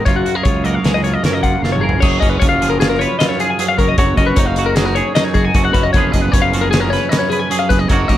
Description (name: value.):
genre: math rock and midwest emo.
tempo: 153 BPM.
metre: 5/4.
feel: straight.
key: unclear.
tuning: A4 = 441 Hz.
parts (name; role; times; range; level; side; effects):
twelve-string electric guitar; accompaniment; 0.0-8.2 s; F#2 to B4; -19 LUFS; right 6 dB; none.
twelve-string electric guitar; arpeggios; 0.0-8.2 s; F#4 to G#5; -18 LUFS; left 7 dB; none.
fuzz fingered electric bass; bass; 0.1-8.2 s; F#1 to F#2; -19 LUFS; equal; overdrive.
loose indie drum kit; drums; 0.1-8.2 s; crash cymbal, hi-hat, kick drum, snare drum, toms; -17 LUFS; equal; none.
room: little or no reverb.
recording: dark, warm production.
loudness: -12 LUFS.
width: side -12 dB against mid.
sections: 0.0-2.0 A section; 2.0-8.2 B section.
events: drum fill 1.6-2.0.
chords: 0.1 F#maj7; 2.0 A#m7/F#.